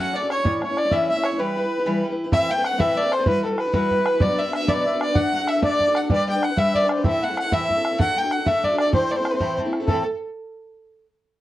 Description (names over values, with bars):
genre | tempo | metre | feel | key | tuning
celtic folk, Celtic jig | 127 BPM (dotted quarters) | 6/8 | straight | A dorian | A4 = 443 Hz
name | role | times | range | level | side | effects
clear fiddle | melody | 0.0-10.0 s | A4 to G5 | -23 LUFS | right 1 dB | slapback echo
mellow accordion | second line | 0.0-10.0 s | A4 to G5 | -25 LUFS | left 2 dB | none
picked steel-string acoustic guitar | accompaniment | 0.0-10.0 s | A2 to C#5 | -25 LUFS | left 1 dB | none
bodhran | percussion | 0.3-10.0 s | none | -23 LUFS | right 1 dB | none
room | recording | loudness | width
moderate studio reverb, RT60 0.6 s | worn, warbling old tape, cassette tape, warbly pitch drift | -19 LUFS | side -14 dB against mid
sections
0.0-2.3 A section; 2.3-9.9 B section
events
break 1.4-2.3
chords
0.4 A; 1.4 Em; 2.3 Amadd9; 3.3 Emadd9; 4.2 Bm; 5.2 D; 6.1 G; 7.0 Am; 8.0 D; 8.9 Am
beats
| 0.44 0.91 | 1.38 1.85 | 2.33 2.80 | 3.27 3.74 | 4.21 4.68 | 5.15 5.62 | 6.10 6.57 | 7.04 7.51 | 7.99 8.46 | 8.93 9.40 | 9.88